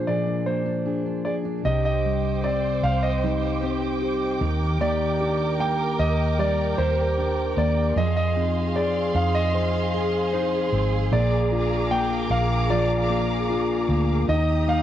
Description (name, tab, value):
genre	pop ballad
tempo	76 BPM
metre	4/4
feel	straight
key	Eb major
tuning	A4 = 440 Hz
part	clear concert grand piano	melody	0.0-14.8 s	C5 to G5	-26 LUFS	right 1 dB	cassette tape
part	mellow tine electric piano	accompaniment	0.0-14.8 s	Bb2 to C5	-27 LUFS	left 7 dB	none
part	fingerpicked steel-string acoustic guitar	arpeggios	0.0-14.8 s	Bb2 to Ab4	-30 LUFS	right 7 dB	none
part	vintage muted fingered electric bass	bass	1.6-14.8 s	Ab1 to F2	-25 LUFS	equal	none
part	warm studio string section	sustained chords	1.7-14.8 s	G4 to Eb6	-29 LUFS	right 2 dB	none
room	light reverb, small room ambience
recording	home recording on cassette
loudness	-21 LUFS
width	side -11 dB against mid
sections	0.0-1.7 A section; 1.7-14.3 B section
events	none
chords	0.0 Bb7; 1.7 Cmadd9; 4.4 Ebmaj7; 8.0 Fm7; 11.1 Bb7; 14.3 Eb